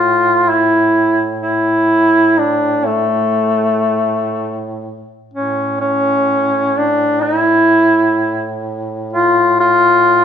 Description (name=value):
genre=caucasian folk, Caucasian lament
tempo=free time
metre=none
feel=none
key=unclear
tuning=A4 = 440 Hz
part: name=warm duduk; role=melody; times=0.0-10.2 s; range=A3 to F4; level=-12 LUFS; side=equal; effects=none
part: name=mellow duduk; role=drone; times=0.0-10.2 s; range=A2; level=-24 LUFS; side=right 3 dB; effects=none
room=moderate scoring stage reverb, RT60 1.4 s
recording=minimal, uncompressed stereo recording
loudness=-12 LUFS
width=side -8 dB against mid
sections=0.0-5.3 A section; 5.3-10.2 B section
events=none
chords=none